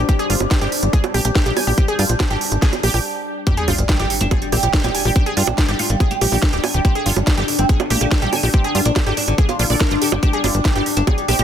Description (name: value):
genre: psychedelic trance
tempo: 142 BPM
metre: 4/4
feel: straight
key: G phrygian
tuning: A4 = 440 Hz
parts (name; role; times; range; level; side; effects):
- overtone-sweeping drone; sustained chords; 0.0-11.4 s; D4; -26 LUFS; left 4 dB; chorus, built-in reverb, phaser, sidechain pumping
- wide unison pluck; riff; 0.0-11.4 s; F4 to Ab5; -24 LUFS; right 1 dB; auto-pan, cassette tape, sidechain pumping, dub echo
- tight sequencer bass; bass; 0.0-11.4 s; D1 to G2; -19 LUFS; equal; none
- deep dark ambient pad; texture; 0.0-11.4 s; G3 to G6; -32 LUFS; left 2 dB; chorus, built-in reverb, sidechain pumping
- electronic kick drum; drums; 0.1-11.2 s; none; -18 LUFS; equal; none
- garage drum kit; drums; 0.1-11.4 s; bongos, hi-hat, snare drum; -22 LUFS; right 3 dB; none
- oud; melody; 3.5-11.4 s; D3 to G4; -24 LUFS; right 4 dB; phaser, sidechain pumping, digital delay
- sub drop; sound effects; 3.5-5.2 s; none; -27 LUFS; equal; none
room: little or no reverb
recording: dense, heavily limited modern master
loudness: -15 LUFS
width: side -9 dB against mid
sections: 0.0-3.5 A section; 3.5-11.4 B section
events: stop 3.0-3.5; drop 3.5-11.4; impact 3.5-5.2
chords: 0.0 G5